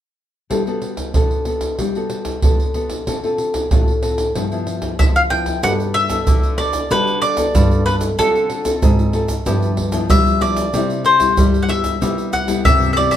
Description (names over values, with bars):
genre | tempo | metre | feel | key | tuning
samba and choro | 94 BPM | 4/4 | straight | G major | A4 = 441 Hz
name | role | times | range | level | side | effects
nylon-string guitar | accompaniment | 0.5-13.2 s | G2 to A4 | -22 LUFS | left 3 dB | none
surdo, pandeiro and egg shaker | percussion | 0.5-13.2 s | none | -19 LUFS | right 1 dB | none
mandolin | melody | 5.0-13.2 s | A4 to G5 | -18 LUFS | left 1 dB | none
nylon-string guitar | bass | 5.6-13.2 s | G2 to G3 | -21 LUFS | left 1 dB | none
room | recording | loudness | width
moderate studio reverb, RT60 0.8 s | band playing live in one room | -15 LUFS | side -10 dB against mid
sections
0.5-5.6 A section; 5.6-13.2 B section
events
none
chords
0.5 Gmaj9; 3.1 Dm7; 4.3 G6; 5.6 Gmaj9; 8.2 Dm7; 9.5 G13; 10.7 Cmaj7